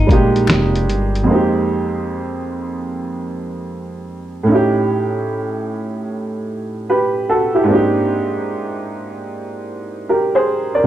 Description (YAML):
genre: lo-fi hip hop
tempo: 75 BPM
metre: 4/4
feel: swing 64% on 16ths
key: F minor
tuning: A4 = 440 Hz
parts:
  - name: semi-hollow electric guitar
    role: second line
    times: 0.0-1.1 s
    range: Eb4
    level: -26 LUFS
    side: left 4 dB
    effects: low-pass filter, tape echo
  - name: warm upright piano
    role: accompaniment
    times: 0.0-10.9 s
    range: F2 to D5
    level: -17 LUFS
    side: right 2 dB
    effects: cassette tape, low-pass filter
  - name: upright bass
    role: bass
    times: 0.0-1.3 s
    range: F1 to Bb1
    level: -19 LUFS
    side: left 1 dB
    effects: none
  - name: lo-fi sampler-style drum kit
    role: drums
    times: 0.1-1.3 s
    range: finger snaps, hi-hat, kick drum, snare drum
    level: -15 LUFS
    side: equal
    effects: none
  - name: finger snaps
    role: percussion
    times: 0.5-0.7 s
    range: none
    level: -27 LUFS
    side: left 7 dB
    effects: none
room: moderate studio reverb, RT60 0.6 s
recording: dark, warm production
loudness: -16 LUFS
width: side -12 dB against mid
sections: 0.0-1.3 A section; 1.3-10.9 B section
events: none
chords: 0.0 Fm11; 4.5 A7#11; 7.7 Abmaj9#11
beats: 0.48 | 1.28 2.08 2.88 3.68 | 4.48 5.28 6.08 6.88 | 7.68 8.48 9.28 10.08